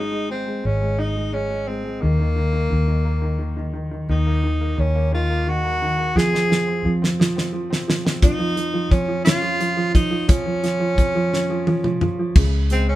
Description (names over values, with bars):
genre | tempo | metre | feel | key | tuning
six-eight pop ballad | 58 BPM (dotted quarters) | 6/8 | straight | Db major | A4 = 439 Hz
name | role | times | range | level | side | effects
breathy tenor saxophone | melody | 0.0-13.0 s | Bb3 to Ab4 | -24 LUFS | right 1 dB | none
bright upright piano | accompaniment | 0.0-13.0 s | Db3 to Eb4 | -25 LUFS | right 1 dB | none
vintage muted fingered electric bass | bass | 0.0-13.0 s | Ab1 to F2 | -23 LUFS | left 1 dB | none
damped 70s drum kit | drums | 6.2-12.9 s | crash cymbal, hi-hat, kick drum, snare drum, toms | -18 LUFS | equal | none
room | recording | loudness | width
light reverb | band playing live in one room | -18 LUFS | side -15 dB against mid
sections
0.0-4.1 A section; 4.1-12.4 B section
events
drum fill 6.2-8.2, 11.3-12.4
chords
0.0 Ab5; 2.0 Eb5; 6.2 Fm; 8.2 Db/F; 12.4 Db5